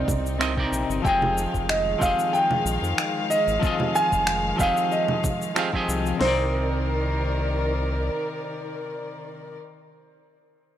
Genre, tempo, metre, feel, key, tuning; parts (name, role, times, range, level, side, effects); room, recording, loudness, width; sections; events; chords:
sunset chillout; 93 BPM; 4/4; swing 54% on 16ths; C minor; A4 = 444 Hz
warm concert grand piano; melody; 0.0-9.6 s; C5 to Ab5; -25 LUFS; right 1 dB; tape echo
semi-hollow electric guitar; accompaniment; 0.0-9.7 s; C3 to F5; -29 LUFS; moving between left 5 dB and right 4 dB; auto-pan, tape echo
dark chamber string section; sustained chords; 0.0-9.6 s; Eb3 to F5; -30 LUFS; left 2 dB
round analog bass; bass; 0.0-8.1 s; F1 to F2; -28 LUFS; equal; tube saturation
electronic congas, cabasa and finger snaps; drums; 0.1-6.2 s; -29 LUFS; right 1 dB; overdrive, studio reverb
smooth R&B drum kit; drums; 0.1-6.4 s; hi-hat, kick drum, snare drum; -27 LUFS; equal; overdrive, studio reverb
light reverb; dry, gritty hardware recording; -21 LUFS; side -11 dB against mid
0.0-6.2 A section; 6.2-8.8 B section
0.0 Cm9; 1.0 Fm9; 6.2 Cm9